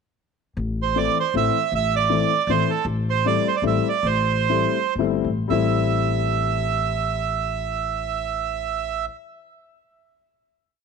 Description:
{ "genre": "musette waltz", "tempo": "109-158 BPM", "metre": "3/4", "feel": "swing 55% on 8ths", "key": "A minor", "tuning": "A4 = 440 Hz", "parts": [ { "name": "upright bass", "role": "bass", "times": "0.6-9.1 s", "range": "G1 to A1", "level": "-26 LUFS", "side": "left 2 dB", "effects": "none" }, { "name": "bandoneon", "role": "melody", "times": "0.8-9.1 s", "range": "A4 to E5", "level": "-23 LUFS", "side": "right 11 dB", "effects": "slapback echo" }, { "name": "dark upright piano", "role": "accompaniment", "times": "1.0-9.1 s", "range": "E3 to E4", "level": "-25 LUFS", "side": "left 14 dB", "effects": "none" } ], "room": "light reverb", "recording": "1960s-style stereo with parts hard left and right", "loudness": "-20 LUFS", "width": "side -5 dB against mid", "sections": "0.6-5.5 A section; 5.5-8.8 final chord", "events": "slowing down 2.9-5.5", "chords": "0.6 Am; 2.9 Am7" }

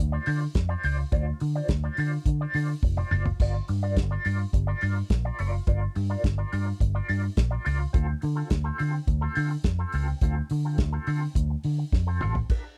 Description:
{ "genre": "disco", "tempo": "106 BPM", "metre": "4/4", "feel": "straight", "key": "unclear", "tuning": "A4 = 445 Hz", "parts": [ { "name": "electric guitar with an envelope filter", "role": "accompaniment", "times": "0.0-12.7 s", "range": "C4 to D5", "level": "-36 LUFS", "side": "equal", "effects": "wah, tremolo" }, { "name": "vintage muted fingered electric bass", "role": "bass", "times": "0.0-12.4 s", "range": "F1 to D3", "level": "-29 LUFS", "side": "equal", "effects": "none" }, { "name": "damped 70s drum kit", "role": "drums", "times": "0.3-12.6 s", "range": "crash cymbal, hi-hat, kick drum, snare drum, splash cymbal, toms", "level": "-27 LUFS", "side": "equal", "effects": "none" } ], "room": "little or no reverb", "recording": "dry, close 1970s-style studio recording", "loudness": "-27 LUFS", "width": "mono", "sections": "0.0-12.5 A section", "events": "drum fill 2.8-3.4, 11.9-12.5", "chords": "0.0 Dm7; 3.4 Gm7; 7.9 Dm7" }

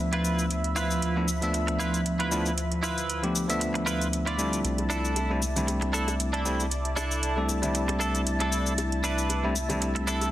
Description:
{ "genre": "nu-disco, nu disco", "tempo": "116 BPM", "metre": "4/4", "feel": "swing 54% on 16ths", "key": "unclear", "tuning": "A4 = 438 Hz", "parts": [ { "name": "barky tine electric piano", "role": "accompaniment", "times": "0.0-10.3 s", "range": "F3 to E5", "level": "-29 LUFS", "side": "equal", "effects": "tape echo" }, { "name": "lush unison pad", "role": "sustained chords", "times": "0.0-10.3 s", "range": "F3 to B5", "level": "-33 LUFS", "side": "equal", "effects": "chorus, vintage 12-bit sampler grit" }, { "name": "chorused synth bass", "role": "bass", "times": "0.0-10.3 s", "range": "C2 to D2", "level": "-31 LUFS", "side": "equal", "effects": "none" }, { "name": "direct-recorded clean electric guitar", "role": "riff", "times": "0.1-10.3 s", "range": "D4 to D5", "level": "-32 LUFS", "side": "right 2 dB", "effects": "analog chorus, low-pass filter, tape echo" }, { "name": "electronic hi-hat and shaker", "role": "drums", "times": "0.1-10.3 s", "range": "none", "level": "-33 LUFS", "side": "left 1 dB", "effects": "none" }, { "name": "bongos and congas", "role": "percussion", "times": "4.8-10.3 s", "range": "none", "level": "-38 LUFS", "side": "left 2 dB", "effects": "none" } ], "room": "light reverb, digital ambience", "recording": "dense, heavily limited modern master", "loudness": "-25 LUFS", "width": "side -14 dB against mid", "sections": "0.0-10.3 A section", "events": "filter sweep on analog synth pad 0.0-10.3", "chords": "0.0 Dm69; 4.6 C69" }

